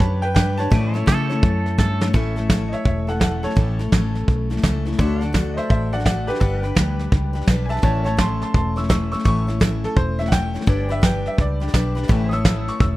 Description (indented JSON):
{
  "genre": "honky-tonk and classic country",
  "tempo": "169 BPM",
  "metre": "4/4",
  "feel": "swing 64% on 8ths",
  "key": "A mixolydian",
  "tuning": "A4 = 440 Hz",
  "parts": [
    { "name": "bright upright piano", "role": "melody", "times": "0.0-13.0 s", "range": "G4 to E6", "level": "-27 LUFS", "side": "equal", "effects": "none" },
    { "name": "picked steel-string acoustic guitar", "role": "accompaniment", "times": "0.0-13.0 s", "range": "A2 to C#5", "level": "-26 LUFS", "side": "left 3 dB", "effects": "none" },
    { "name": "pedal steel guitar", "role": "sustained chords", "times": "0.0-13.0 s", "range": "D4 to G5", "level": "-36 LUFS", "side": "right 1 dB", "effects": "wide subtle chorus" },
    { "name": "vintage muted fingered electric bass", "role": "bass", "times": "0.0-13.0 s", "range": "E1 to C#3", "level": "-23 LUFS", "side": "equal", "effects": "none" },
    { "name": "soft brush drum kit", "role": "drums", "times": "0.0-12.9 s", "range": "hi-hat, kick drum, snare drum", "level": "-20 LUFS", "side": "equal", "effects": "none" },
    { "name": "twangy electric guitar", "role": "second line", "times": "1.1-2.1 s", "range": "A4", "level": "-27 LUFS", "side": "right 3 dB", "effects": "tape echo" }
  ],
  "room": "little or no reverb",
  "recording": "rough home demo mix",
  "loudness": "-17 LUFS",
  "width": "side -17 dB against mid",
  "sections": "0.0-2.1 A section; 2.1-13.0 B section",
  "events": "drum fill 1.8-2.1; upright piano solo 2.1-13.0",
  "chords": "0.0 G; 0.7 A; 5.0 D; 6.4 G; 7.8 A; 10.7 G; 12.1 A"
}